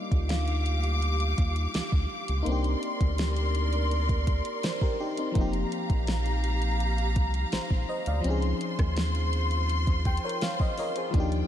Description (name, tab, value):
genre	contemporary R&B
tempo	83 BPM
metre	4/4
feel	straight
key	unclear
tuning	A4 = 439 Hz
part	FM electric piano	accompaniment	0.0-11.5 s	F3 to G5	-33 LUFS	left 2 dB	chorus
part	warm studio string section	sustained chords	0.0-11.5 s	F4 to D6	-33 LUFS	left 1 dB	sidechain pumping
part	rubbery square bass	bass	0.1-11.4 s	F1 to Eb2	-27 LUFS	equal	none
part	smooth R&B drum kit	drums	0.1-11.5 s	hi-hat, kick drum, rim click, snare drum	-29 LUFS	equal	none
part	synth chime	texture	0.3-2.6 s	F5	-44 LUFS	left 3 dB	ensemble chorus, phaser, ping-pong delay
room	light reverb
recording	none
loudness	-25 LUFS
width	side -11 dB against mid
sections	0.0-11.5 A section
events	FM electric piano fill 9.7-11.1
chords	0.0 Ebmaj9; 2.5 Cm9; 5.4 F9sus4; 8.2 Dbmaj9